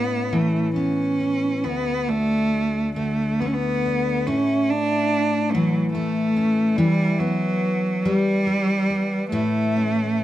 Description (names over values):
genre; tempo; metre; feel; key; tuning
celtic folk, Celtic slow air; 46 BPM (dotted quarters); 6/8; rubato; unclear; A4 = 438 Hz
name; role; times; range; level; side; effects
clear cello; melody; 0.0-10.2 s; F#3 to D4; -21 LUFS; right 1 dB; none
picked steel-string acoustic guitar; accompaniment; 0.0-10.2 s; D2 to F#4; -24 LUFS; left 2 dB; none
room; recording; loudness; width
light reverb; close, detailed microphones; -19 LUFS; side -13 dB against mid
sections
0.0-10.2 A section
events
none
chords
0.0 Aadd9; 1.6 D; 4.3 A; 6.8 Em; 9.3 A